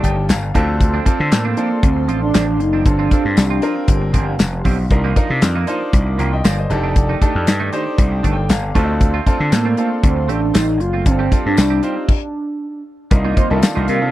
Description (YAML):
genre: early-eighties boogie funk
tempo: 117 BPM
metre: 4/4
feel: straight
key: C dorian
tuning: A4 = 441 Hz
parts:
  - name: bright grand piano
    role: accompaniment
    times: 0.0-14.1 s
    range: C4 to Bb5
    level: -23 LUFS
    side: equal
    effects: none
  - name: chorused pulse-width pad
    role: sustained chords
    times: 0.0-14.1 s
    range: Eb3 to D6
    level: -29 LUFS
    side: equal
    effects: none
  - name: clean electric guitar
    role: riff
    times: 0.0-14.1 s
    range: Eb3 to G4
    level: -26 LUFS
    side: right 8 dB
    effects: analog chorus
  - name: gritty slap bass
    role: bass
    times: 0.0-14.1 s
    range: F1 to D3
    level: -18 LUFS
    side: equal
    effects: overdrive
  - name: damped 70s drum kit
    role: drums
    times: 0.0-14.0 s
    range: crash cymbal, handclaps, hi-hat, kick drum, snare drum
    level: -15 LUFS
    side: equal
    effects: none
  - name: tambourine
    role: percussion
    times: 0.3-13.8 s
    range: none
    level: -32 LUFS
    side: left 22 dB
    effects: none
  - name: mellow horn-like synth lead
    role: melody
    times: 1.3-4.4, 9.5-14.1 s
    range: Bb3 to F5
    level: -20 LUFS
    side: right 2 dB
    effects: chorus, phaser
  - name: mellow synth brass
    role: second line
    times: 13.4-14.0 s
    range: G3 to C5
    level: -21 LUFS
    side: left 1 dB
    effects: chorus
room: little or no reverb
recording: dry, close 1970s-style studio recording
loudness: -14 LUFS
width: side -15 dB against mid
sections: 0.0-13.1 A section; 13.1-14.1 B section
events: grand piano fill 0.0-0.8, 8.0-9.0; stop 12.1-13.1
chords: 0.0 F13; 0.5 Dm7; 2.9 G7sus4; 4.9 Cm11; 6.7 F13; 8.8 Dm7; 11.1 G7sus4; 12.1 N.C.; 13.1 Cm11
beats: 0.29 | 0.81 1.32 1.83 2.34 | 2.86 3.37 3.88 4.39 | 4.91 5.42 5.93 6.45 | 6.96 7.47 7.98 8.50 | 9.01 9.52 10.04 10.55 | 11.06 11.57 12.09 12.60 | 13.11 13.62